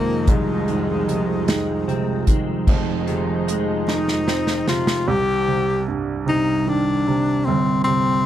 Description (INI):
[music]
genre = six-eight pop ballad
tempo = 50 BPM (dotted quarters)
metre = 6/8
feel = straight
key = C minor from 5.1 s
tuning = A4 = 440 Hz
[part]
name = warm tenor saxophone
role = melody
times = 0.0-8.3 s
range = Ab3 to G4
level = -21 LUFS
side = left 3 dB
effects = none
[part]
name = warm baby grand piano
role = accompaniment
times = 0.0-8.3 s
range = F1 to Eb4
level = -23 LUFS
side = right 5 dB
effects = none
[part]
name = lush unison pad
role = sustained chords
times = 0.0-5.0 s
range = F2 to Eb4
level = -25 LUFS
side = equal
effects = chorus
[part]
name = direct-recorded clean electric guitar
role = arpeggios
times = 0.0-5.7 s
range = Eb3 to C4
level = -31 LUFS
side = left 11 dB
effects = ensemble chorus
[part]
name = unplugged drum kit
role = drums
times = 0.3-5.1 s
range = crash cymbal, hi-hat, kick drum, snare drum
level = -20 LUFS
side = equal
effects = none
[sound]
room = little or no reverb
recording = dry, close 1970s-style studio recording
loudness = -18 LUFS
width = side -11 dB against mid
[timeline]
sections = 0.0-2.7 A section; 2.7-5.1 B section; 5.1-8.3 C section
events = drum fill 3.9-5.1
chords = 0.0 Fm7; 5.1 Cm